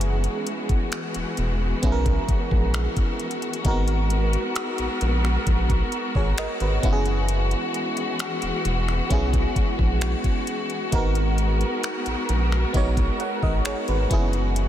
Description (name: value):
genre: contemporary R&B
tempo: 66 BPM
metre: 4/4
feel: straight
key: unclear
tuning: A4 = 445 Hz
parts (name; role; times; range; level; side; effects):
- FM electric piano; accompaniment; 0.0-14.7 s; A#3 to F#5; -29 LUFS; right 2 dB; chorus
- warm studio string section; sustained chords; 0.0-14.7 s; E3 to A#4; -28 LUFS; left 2 dB; none
- rubbery square bass; bass; 0.0-14.7 s; E1 to B1; -23 LUFS; equal; none
- smooth R&B drum kit; drums; 0.0-14.7 s; finger snaps, hi-hat, kick drum; -26 LUFS; equal; none
room: light reverb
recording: none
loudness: -21 LUFS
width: side -11 dB against mid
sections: 0.0-14.7 A section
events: none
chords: 0.0 F#9sus4; 3.6 G#m9; 6.8 F#9sus4; 10.9 G#m9; 14.1 F#9sus4